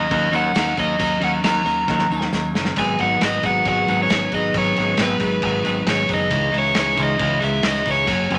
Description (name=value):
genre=indie rock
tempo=136 BPM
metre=4/4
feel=straight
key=unclear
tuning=A4 = 437 Hz
part: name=overdriven semi-hollow guitar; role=melody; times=0.0-8.4 s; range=B4 to A#5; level=-23 LUFS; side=equal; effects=none
part: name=twelve-string electric guitar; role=riff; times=0.0-8.4 s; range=F#2 to A#4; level=-25 LUFS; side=equal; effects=none
part: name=growling fingered electric bass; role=bass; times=0.0-8.4 s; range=F#1 to D#2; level=-28 LUFS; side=equal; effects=overdrive
part: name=loose indie drum kit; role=drums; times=0.1-8.4 s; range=crash cymbal, kick drum, snare drum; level=-27 LUFS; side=equal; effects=none
part: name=tambourine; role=percussion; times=0.3-8.4 s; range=none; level=-46 LUFS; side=equal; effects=none
part: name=tine electric piano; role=second line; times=2.8-8.4 s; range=B3 to G#4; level=-37 LUFS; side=equal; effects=none
room=light reverb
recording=none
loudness=-19 LUFS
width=mono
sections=0.0-8.4 A section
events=drum fill 1.9-2.8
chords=0.0 D#m7; 2.8 G#m7; 6.3 C#madd9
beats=0.12 0.56 | 1.00 1.44 1.89 2.33 | 2.77 3.21 3.65 4.10 | 4.54 4.98 5.43 5.87 | 6.31 6.76 7.20 7.64 | 8.09